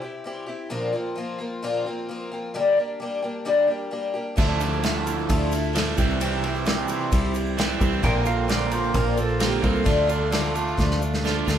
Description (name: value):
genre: folk rock and heartland rock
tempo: 131 BPM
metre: 4/4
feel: straight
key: D minor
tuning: A4 = 440 Hz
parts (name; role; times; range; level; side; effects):
- picked twelve-string acoustic guitar; accompaniment; 0.0-11.6 s; G2 to G4; -26 LUFS; left 3 dB; none
- electric guitar at the edge of break-up; riff; 4.4-11.6 s; Bb2 to F4; -26 LUFS; right 4 dB; phaser
- fingered electric bass; bass; 4.4-11.6 s; Bb1 to D2; -26 LUFS; equal; none
- unplugged drum kit; drums; 4.4-11.6 s; crash cymbal, kick drum, ride cymbal, snare drum; -26 LUFS; equal; none
- egg shaker; percussion; 4.4-11.6 s; none; -45 LUFS; right 10 dB; none
- pedal steel guitar; second line; 8.0-10.5 s; G4 to G5; -29 LUFS; right 3 dB; none
room: moderate large studio reverb, RT60 1.3 s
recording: band playing live in one room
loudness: -21 LUFS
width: side -9 dB against mid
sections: 0.0-11.6 A section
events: drum fill 10.8-11.6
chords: 0.0 C; 0.7 Bbadd9; 2.5 Gm; 4.4 Dmadd9; 6.0 C; 8.0 Bbadd9; 9.9 Dm